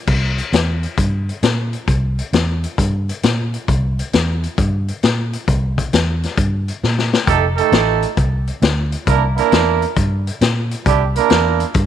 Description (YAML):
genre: electric blues shuffle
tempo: 134 BPM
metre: 4/4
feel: swing 67% on 8ths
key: C mixolydian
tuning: A4 = 440 Hz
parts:
  - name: vintage muted fingered electric bass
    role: bass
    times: 0.1-11.9 s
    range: F1 to Bb2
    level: -18 LUFS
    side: equal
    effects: none
  - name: vintage drum kit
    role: drums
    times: 0.1-11.9 s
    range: crash cymbal, hi-hat, kick drum, snare drum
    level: -18 LUFS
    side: left 4 dB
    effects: none
  - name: bright horn section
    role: stabs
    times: 7.3-11.7 s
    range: G3 to Bb4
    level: -16 LUFS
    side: right 12 dB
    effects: none
room: light reverb, small room reverb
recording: 1960s-style stereo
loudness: -15 LUFS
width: side -10 dB against mid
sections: 0.1-11.9 A section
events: drum fill 6.8-7.3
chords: 0.1 C7; 7.3 F9; 9.1 C9